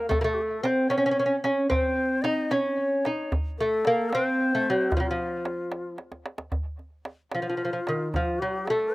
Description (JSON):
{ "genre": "Persian modal ensemble", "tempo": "75 BPM (dotted quarters)", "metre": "6/8", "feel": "straight", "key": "F dastgah homayun", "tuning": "A4 = 440 Hz", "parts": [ { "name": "lute", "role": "melody", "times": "0.0-8.9 s", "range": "Eb3 to Eb4", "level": "-24 LUFS", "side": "equal", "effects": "slapback echo" }, { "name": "breathy bright ney", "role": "second line", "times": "0.0-8.9 s", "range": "F4 to Eb5", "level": "-30 LUFS", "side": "left 2 dB", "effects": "none" }, { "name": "tombak", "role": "percussion", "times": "0.1-8.8 s", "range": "none", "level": "-30 LUFS", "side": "right 1 dB", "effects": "none" } ], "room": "little or no reverb", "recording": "recorded outdoors, with no room sound", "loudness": "-24 LUFS", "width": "side -19 dB against mid", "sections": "0.0-6.5 A section; 6.5-8.9 B section", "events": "drum fill 6.0-6.5", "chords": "none", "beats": "| 0.11 0.91 | 1.71 2.52 | 3.32 4.12 | 4.92 5.72 | 6.53 7.33 | 8.14 8.94" }